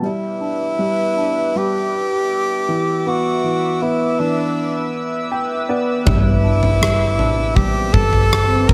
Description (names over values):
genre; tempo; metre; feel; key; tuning
pop ballad; 80 BPM; 4/4; straight; unclear; A4 = 437 Hz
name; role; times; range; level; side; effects
warm upright piano; accompaniment; 0.0-8.7 s; E3 to G5; -25 LUFS; equal; none
chorused pulse-width pad; sustained chords; 0.0-8.7 s; A#4 to E6; -28 LUFS; equal; none
warm tenor saxophone; melody; 0.1-8.7 s; D4 to A#4; -22 LUFS; equal; none
woody fretless electric bass; bass; 6.1-8.7 s; F#1 to A1; -20 LUFS; equal; ensemble chorus
huge arena drum kit; drums; 6.1-8.7 s; kick drum, rim click, toms; -20 LUFS; equal; none
swell; sound effects; 7.7-8.7 s; none; -29 LUFS; equal; none
room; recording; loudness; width
small room ambience; none; -18 LUFS; mono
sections
0.0-8.7 A section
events
upright piano fill 5.0-6.1; swell 7.7-8.7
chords
0.0 G6; 2.7 E5; 6.1 G6